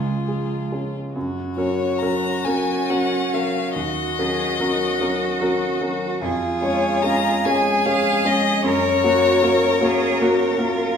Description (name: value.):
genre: classical, slow romantic movement for piano quartet.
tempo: 43-52 BPM (dotted quarters).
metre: 6/8.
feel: rubato.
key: F# major.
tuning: A4 = 437 Hz.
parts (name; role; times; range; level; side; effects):
clear violin; melody; 0.0-10.6 s; E#4 to A#5; -23 LUFS; left 6 dB; none.
bright cello; second line; 0.0-11.0 s; G#3 to A#4; -26 LUFS; right 5 dB; none.
clear violin; second line; 0.0-11.0 s; F#4 to A#4; -28 LUFS; left 2 dB; none.
warm grand piano; accompaniment; 0.0-11.0 s; C#2 to C#5; -21 LUFS; equal; none.
room: wet recital hall reverb, RT60 1.3 s.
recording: heard from further back in the room.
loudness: -18 LUFS.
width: side -7 dB against mid.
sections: 0.0-1.2 A section; 1.2-11.0 B section.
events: none.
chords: 0.0 C#; 1.2 F#; 3.8 D#m7; 6.2 C#/E#; 8.7 F#.